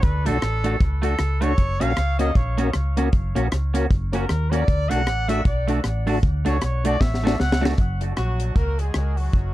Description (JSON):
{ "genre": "ska", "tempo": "155 BPM", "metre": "4/4", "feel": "swing 59% on 8ths", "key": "unclear", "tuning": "A4 = 438 Hz", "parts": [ { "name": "warm trumpet", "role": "melody", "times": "0.0-7.6 s", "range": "A4 to F#5", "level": "-28 LUFS", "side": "equal", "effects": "dub echo" }, { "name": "hollow-body short-scale fingered electric bass", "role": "bass", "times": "0.0-9.5 s", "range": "F#1 to D#2", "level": "-23 LUFS", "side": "equal", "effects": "none" }, { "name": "deep reggae drum kit", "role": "drums", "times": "0.0-9.4 s", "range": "hi-hat, kick drum, rim click, snare drum", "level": "-22 LUFS", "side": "equal", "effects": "none" }, { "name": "mellow tonewheel organ", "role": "stabs", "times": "0.2-7.7 s", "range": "C#4 to A#4", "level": "-30 LUFS", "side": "left 4 dB", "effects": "chorus vibrato, fast rotary speaker, dub echo" }, { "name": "clean electric guitar", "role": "accompaniment", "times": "0.3-7.7 s", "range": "A3 to F#4", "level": "-29 LUFS", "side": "right 4 dB", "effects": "dub echo" }, { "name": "mellow horn section", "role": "melody", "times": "8.2-9.5 s", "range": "F#3 to A#4", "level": "-30 LUFS", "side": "equal", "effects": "dub echo" } ], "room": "little or no reverb", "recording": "dark, warm production", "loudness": "-19 LUFS", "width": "side -16 dB against mid", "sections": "0.0-7.8 A section; 7.8-9.5 B section", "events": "trumpet solo 0.0-7.8; drum fill 7.0-7.8", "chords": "0.0 D; 1.6 F#; 4.7 D; 7.8 F#" }